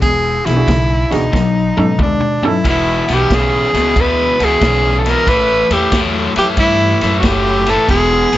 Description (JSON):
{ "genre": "electric blues shuffle", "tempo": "92 BPM", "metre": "4/4", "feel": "swing 67% on 8ths", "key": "unclear", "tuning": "A4 = 441 Hz", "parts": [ { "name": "bright tenor saxophone", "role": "melody", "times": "0.0-8.4 s", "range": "D4 to B4", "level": "-15 LUFS", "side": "right 1 dB", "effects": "none" }, { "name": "cranked stack guitar", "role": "riff", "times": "0.0-8.4 s", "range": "E2 to G#3", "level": "-17 LUFS", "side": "left 3 dB", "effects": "overdrive" }, { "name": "upright bass", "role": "bass", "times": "0.0-8.4 s", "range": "E1 to G#2", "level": "-19 LUFS", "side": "equal", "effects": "none" }, { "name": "vintage drum kit", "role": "drums", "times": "0.0-8.4 s", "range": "kick drum, ride cymbal, snare drum, toms", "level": "-20 LUFS", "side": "equal", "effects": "none" }, { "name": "warm upright piano", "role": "accompaniment", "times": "0.5-2.5 s", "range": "C#4 to A4", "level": "-21 LUFS", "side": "right 4 dB", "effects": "none" } ], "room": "small room ambience", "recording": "nothing above 7.7 kHz", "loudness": "-11 LUFS", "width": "side -14 dB against mid", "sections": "0.0-2.6 A section; 2.6-8.4 A section", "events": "drum fill 1.3-2.6", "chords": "0.0 E9; 1.3 B9; 2.6 E7; 5.3 A5" }